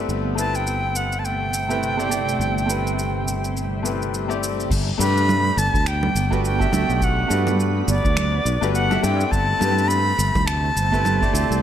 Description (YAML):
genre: sunset chillout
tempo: 104 BPM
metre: 4/4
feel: swing 58% on 16ths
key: G major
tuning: A4 = 436 Hz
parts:
  - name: bright concert grand piano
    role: accompaniment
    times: 0.0-11.6 s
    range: A3 to E5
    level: -26 LUFS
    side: moving between left 8 dB and right 7 dB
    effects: auto-pan, ping-pong delay
  - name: shimmering ambient pad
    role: sustained chords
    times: 0.0-11.6 s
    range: C3 to B3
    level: -30 LUFS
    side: right 1 dB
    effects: chorus, built-in reverb
  - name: sustaining fretless electric bass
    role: bass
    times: 0.0-11.6 s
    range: G1 to G2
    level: -23 LUFS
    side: equal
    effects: analog chorus
  - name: deep house drum kit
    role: drums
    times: 0.1-11.6 s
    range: congas, crash cymbal, finger snaps, shaker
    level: -27 LUFS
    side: right 3 dB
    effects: none
  - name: bright reedy silver concert flute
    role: melody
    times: 0.4-11.6 s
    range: D5 to B5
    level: -24 LUFS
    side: equal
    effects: digital delay
  - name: electronic kick drum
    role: drums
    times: 4.7-11.3 s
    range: none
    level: -25 LUFS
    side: equal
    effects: none
room: light reverb, digital ambience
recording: none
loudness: -18 LUFS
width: side -10 dB against mid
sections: 0.0-4.7 A section; 4.7-11.6 B section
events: none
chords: 0.1 Am7/G; 4.7 Gmaj7; 9.3 Am7/G